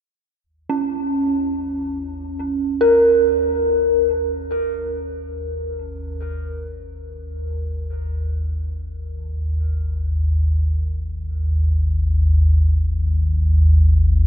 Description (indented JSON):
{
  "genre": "ambient",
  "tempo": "free time",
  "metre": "none",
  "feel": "none",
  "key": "unclear",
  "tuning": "A4 = 440 Hz",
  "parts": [
    { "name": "deep rumbling drone", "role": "drone", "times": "1.2-14.3 s", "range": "G#1 to D#2", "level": "-19 LUFS", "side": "equal", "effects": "built-in reverb, phaser" },
    { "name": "dark detuned synth bell", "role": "arpeggios", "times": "0.7-14.3 s", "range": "C#4 to A#4", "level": "-19 LUFS", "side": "equal", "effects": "chorus, phaser, tape echo" }
  ],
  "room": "wet cathedral reverb, RT60 5.5 s",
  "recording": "nothing above 10.6 kHz",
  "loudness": "-17 LUFS",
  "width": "side -9 dB against mid",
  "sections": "0.5-14.3 A section",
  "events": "filter sweep on synth drone 0.5-14.3",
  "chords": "0.5 G#5",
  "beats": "free time"
}